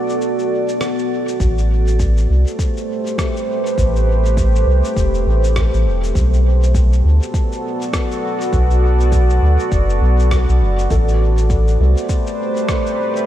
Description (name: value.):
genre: ambient dub.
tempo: 101 BPM.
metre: 4/4.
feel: swing 60% on 16ths.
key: A dorian.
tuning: A4 = 440 Hz.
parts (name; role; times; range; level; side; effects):
deep dark ambient pad; sustained chords; 0.0-13.3 s; A3 to D5; -20 LUFS; right 1 dB; chorus, built-in reverb.
drifting glass-harmonics texture; texture; 0.0-1.4, 11.5-13.3 s; D5; -32 LUFS; left 4 dB; chorus, built-in reverb.
electronic shaker and rim click; drums; 0.1-13.3 s; none; -30 LUFS; left 1 dB; overdrive, dub echo.
soft dub sub bass; bass; 1.4-12.0 s; E1 to D2; -14 LUFS; equal; tube saturation.
electronic kick drum; drums; 1.4-12.8 s; none; -19 LUFS; equal; none.
felt-muted upright piano; arpeggios; 10.9-13.3 s; A4; -28 LUFS; left 4 dB; lush chorus, ping-pong delay.
room: light reverb.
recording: none.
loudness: -14 LUFS.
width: side -12 dB against mid.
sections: 0.0-1.4 A section; 1.4-13.3 B section.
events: break 0.0-1.4.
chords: 0.0 Bm7; 1.4 Am9; 6.2 Bm7; 10.9 Am9.